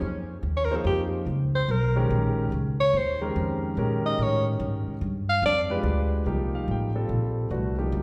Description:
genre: modal jazz.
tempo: 144 BPM.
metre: 3/4.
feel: swing 65% on 8ths.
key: Bb dorian.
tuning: A4 = 440 Hz.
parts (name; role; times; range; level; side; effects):
upright bass; bass; 0.0-8.0 s; A1 to Bb2; -29 LUFS; equal; none.
breathy alto saxophone; melody; 0.6-5.6 s; F4 to F5; -29 LUFS; equal; none.
warm concert grand piano; accompaniment; 0.7-8.0 s; Eb3 to G5; -32 LUFS; equal; none.
room: wet recital hall reverb, RT60 1.9 s.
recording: recorded in a church or concert hall.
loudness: -26 LUFS.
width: mono.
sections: 0.0-6.3 A section; 6.3-8.0 A section.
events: alto saxophone solo 0.0-6.3.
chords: 0.0 Bbm7; 5.0 G7b9; 6.3 Cm9.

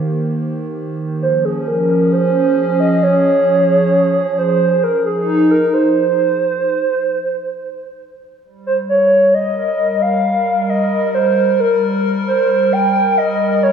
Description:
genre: IDM.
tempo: free time.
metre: none.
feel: none.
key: C phrygian.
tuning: A4 = 440 Hz.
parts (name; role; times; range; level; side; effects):
hollow soft pad; sustained chords; 0.0-13.7 s; Eb3 to C5; -17 LUFS; equal; chorus.
warbly nostalgic lead; melody; 1.2-13.7 s; Ab4 to G5; -14 LUFS; right 2 dB; chorus, digital delay.
room: moderate lush hall reverb, RT60 2.2 s.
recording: small room ambience.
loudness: -13 LUFS.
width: side -7 dB against mid.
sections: 0.0-8.4 A section; 8.4-13.7 B section.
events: break 6.6-8.4.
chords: 0.0 Cm7; 1.2 Dbmaj7; 4.8 Fm7; 8.4 Cm7.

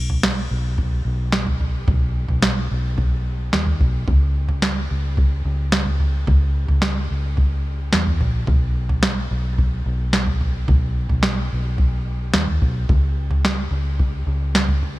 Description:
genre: dream pop.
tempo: 109 BPM.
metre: 4/4.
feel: straight.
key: B major.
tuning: A4 = 440 Hz.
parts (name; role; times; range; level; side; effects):
vintage muted fingered electric bass; bass; 0.0-15.0 s; A#1 to E2; -22 LUFS; equal; none.
soft vintage rhythm box; drums; 0.1-14.9 s; kick drum, snare drum, toms; -20 LUFS; equal; none.
room: little or no reverb.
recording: none.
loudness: -18 LUFS.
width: side -18 dB against mid.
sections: 0.0-15.0 A section.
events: none.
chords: none.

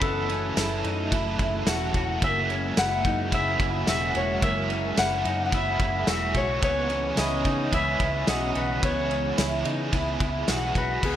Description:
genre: dream pop.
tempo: 109 BPM.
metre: 4/4.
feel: straight.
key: C# dorian.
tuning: A4 = 440 Hz.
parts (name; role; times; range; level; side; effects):
Celtic harp; melody; 0.0-11.2 s; G#4 to F#5; -28 LUFS; left 2 dB; digital delay.
overdriven electric guitar; accompaniment; 0.0-11.2 s; C#3 to A4; -32 LUFS; right 4 dB; tremolo, analog chorus.
warm analog pad; sustained chords; 0.0-11.2 s; C#3 to E4; -33 LUFS; equal; chorus.
electric guitar at the edge of break-up; arpeggios; 0.0-11.2 s; A#3 to F#4; -31 LUFS; equal; ensemble chorus, digital delay.
vintage muted fingered electric bass; bass; 0.0-11.2 s; E1 to C#3; -31 LUFS; equal; none.
loose indie drum kit; drums; 0.0-11.2 s; crash cymbal, kick drum, ride cymbal, snare drum, tambourine; -29 LUFS; equal; none.
room: moderate lush hall reverb, RT60 2.4 s.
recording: bright 1980s-style digital production.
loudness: -23 LUFS.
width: side -11 dB against mid.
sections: 0.0-11.0 A section.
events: none.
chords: 0.0 F#m7; 2.2 F#9; 6.6 C#m9.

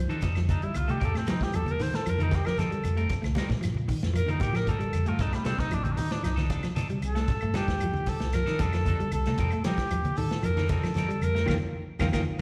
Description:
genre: afrobeat.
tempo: 115 BPM.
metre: 4/4.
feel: straight.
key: unclear.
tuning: A4 = 441 Hz.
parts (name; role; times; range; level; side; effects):
clean electric guitar; arpeggios; 0.0-12.2 s; Eb3 to Bb3; -35 LUFS; equal; slapback echo.
fingered electric bass; bass; 0.0-12.2 s; A1 to F3; -32 LUFS; equal; none.
clean electric guitar; stabs; 0.1-12.2 s; G3 to Bb4; -41 LUFS; equal; slapback echo.
warm soul drum kit; drums; 0.1-12.3 s; hi-hat, kick drum, snare drum; -36 LUFS; equal; none.
shekere; percussion; 0.1-12.3 s; none; -39 LUFS; equal; slapback echo.
congas; percussion; 0.2-12.3 s; none; -36 LUFS; equal; slapback echo.
claves; percussion; 0.4-12.3 s; none; -47 LUFS; equal; slapback echo.
mellow cor anglais; melody; 0.5-12.2 s; G3 to C5; -35 LUFS; equal; slapback echo.
room: light reverb.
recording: live gig heard through the venue's PA, recital hall reverb.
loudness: -28 LUFS.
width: mono.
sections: 0.0-12.4 A section.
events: cor anglais solo 0.0-12.4; band accent 11.5-12.4.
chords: 0.0 Cm69; 1.0 F9sus4; 5.2 Cm69; 9.4 F9sus4.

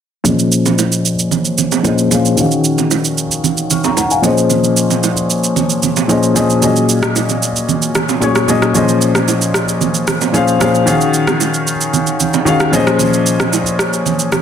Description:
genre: amapiano.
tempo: 113 BPM.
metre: 4/4.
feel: straight.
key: Bb minor.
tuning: A4 = 440 Hz.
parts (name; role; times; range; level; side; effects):
warm concert grand piano; accompaniment; 0.2-14.4 s; Bb2 to F6; -13 LUFS; left 2 dB; low-pass filter.
congas and bongos; percussion; 0.2-14.4 s; none; -19 LUFS; right 10 dB; none.
electronic shaker and rim click; drums; 0.3-14.4 s; none; -18 LUFS; right 3 dB; soft clipping on snare.
room: moderate digital room reverb, RT60 1.2 s, small room ambience.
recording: dense, heavily limited modern master.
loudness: -11 LUFS.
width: side -8 dB against mid.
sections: 0.3-14.4 A section.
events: filter sweep on grand piano 0.3-14.4; kick muted 8.8-9.8.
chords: 0.3 Bbm11; 2.4 Ebm11; 4.2 Bbm11; 6.6 Gb69/Bb; 8.8 Bbm11; 10.9 Ebm11; 12.7 Bbm11.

